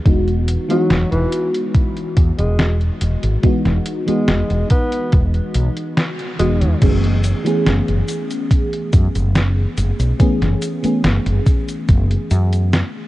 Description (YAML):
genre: vaporwave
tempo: 71 BPM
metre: 4/4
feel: straight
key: unclear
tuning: A4 = 438 Hz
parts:
  - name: FM electric piano with soft pad layer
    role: accompaniment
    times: 0.0-13.1 s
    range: E3 to G#4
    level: -21 LUFS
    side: equal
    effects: analog chorus, analog delay
  - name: woody fretless electric bass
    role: bass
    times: 0.1-12.8 s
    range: E1 to F#2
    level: -17 LUFS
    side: equal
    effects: none
  - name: detuned 8-bit digital drum machine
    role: drums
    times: 0.1-12.9 s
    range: cabasa, crash cymbal, hi-hat, snare drum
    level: -22 LUFS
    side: equal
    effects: small room reverb
  - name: electronic kick drum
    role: drums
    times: 0.1-12.1 s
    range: none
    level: -14 LUFS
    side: equal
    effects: small room reverb
  - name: breathy tenor saxophone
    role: melody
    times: 0.7-6.8 s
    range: E3 to B3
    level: -26 LUFS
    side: equal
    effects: tape echo
room: little or no reverb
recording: cassette tape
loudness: -15 LUFS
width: side -16 dB against mid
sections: 0.0-6.8 A section; 6.8-13.1 B section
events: band accent 6.0-6.4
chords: 0.1 Emaj9; 6.8 F#m11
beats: | 0.06 0.90 1.75 2.59 | 3.44 4.28 5.13 5.97 | 6.82 7.66 8.51 9.35 | 10.20 11.04 11.89 12.73